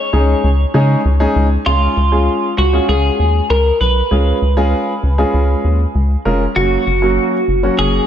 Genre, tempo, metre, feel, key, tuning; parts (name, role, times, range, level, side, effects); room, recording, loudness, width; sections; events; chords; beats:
synth-pop; 98 BPM; 4/4; straight; Db mixolydian; A4 = 440 Hz
twelve-string electric guitar; melody; 0.0-8.1 s; F4 to Db5; -17 LUFS; equal; spring reverb
warm concert grand piano; accompaniment; 0.1-8.1 s; Gb3 to Bb4; -18 LUFS; equal
rubbery square bass; bass; 0.1-8.0 s; F1 to Db3; -14 LUFS; equal
light reverb, small room ambience; -12 LUFS; side -9 dB against mid
0.0-1.7 A section; 1.7-8.1 B section
0.0 Dbsus2; 1.7 Db; 6.6 Gb
0.44 1.05 | 1.66 2.27 2.88 3.50 | 4.11 4.72 5.33 5.95 | 6.56 7.17 7.78